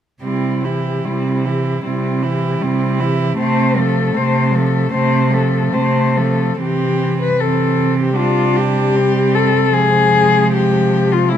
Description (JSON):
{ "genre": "classical, lyrical piece for cello ensemble", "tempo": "77 BPM", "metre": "4/4", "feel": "rubato", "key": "C major", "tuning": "A4 = 443 Hz", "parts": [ { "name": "dark cello", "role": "melody", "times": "0.2-11.4 s", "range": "E4 to C5", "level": "-18 LUFS", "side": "left 6 dB", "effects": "none" }, { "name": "clear cello", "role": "second line", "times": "0.2-11.4 s", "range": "Ab3 to E4", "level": "-22 LUFS", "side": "right 9 dB", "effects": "none" }, { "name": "warm cello", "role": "accompaniment", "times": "0.2-11.4 s", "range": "E3 to A3", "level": "-21 LUFS", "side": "left 2 dB", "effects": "none" }, { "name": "warm cello", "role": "bass", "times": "0.2-11.4 s", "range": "C3", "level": "-18 LUFS", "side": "right 2 dB", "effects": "none" } ], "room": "light reverb", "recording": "close, detailed microphones", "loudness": "-13 LUFS", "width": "side -9 dB against mid", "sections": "0.2-6.6 A section; 6.6-11.4 B section", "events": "none", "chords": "0.2 C; 3.4 F/C; 6.6 C; 9.8 Fm/C", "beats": "| 0.23 1.05 1.84 2.61 | 3.38 4.16 4.93 5.74 | 6.61 7.41 8.19 8.96 | 9.75 10.54 11.31" }